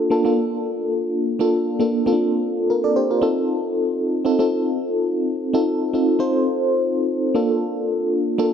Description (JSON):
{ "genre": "pop", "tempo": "116 BPM", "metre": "4/4", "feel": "swing 55% on 16ths", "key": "Bb major", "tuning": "A4 = 443 Hz", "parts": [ { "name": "FM electric piano with tremolo", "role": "solo", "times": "0.0-8.5 s", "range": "Bb3 to D5", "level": "-18 LUFS", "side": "equal", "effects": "phaser" } ], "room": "wet plate reverb, RT60 3.3 s", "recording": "dark, warm production", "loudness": "-18 LUFS", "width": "side -8 dB against mid", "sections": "0.0-8.5 A section", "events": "none", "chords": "0.0 Bbmaj7; 3.2 F7; 7.4 Bbmaj7" }